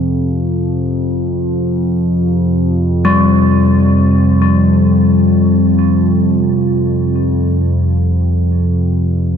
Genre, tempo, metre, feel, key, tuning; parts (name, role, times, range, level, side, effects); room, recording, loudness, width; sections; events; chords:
dark ambient drone; free time; A4 = 441 Hz
analog drone; drone; 0.0-9.4 s; F2 to C3; -12 LUFS; equal; chorus
gamelan-type bronze metallophone; arpeggios; 3.0-8.5 s; G3; -14 LUFS; left 2 dB; ping-pong delay
moderate huge ambient reverb, RT60 8.0 s; dark, warm production; -11 LUFS; side -7 dB against mid
0.0-9.4 A section
fade-in on synth drone 0.0-9.4; fade-out 7.9-9.4
0.0 F5; 3.0 Fsus2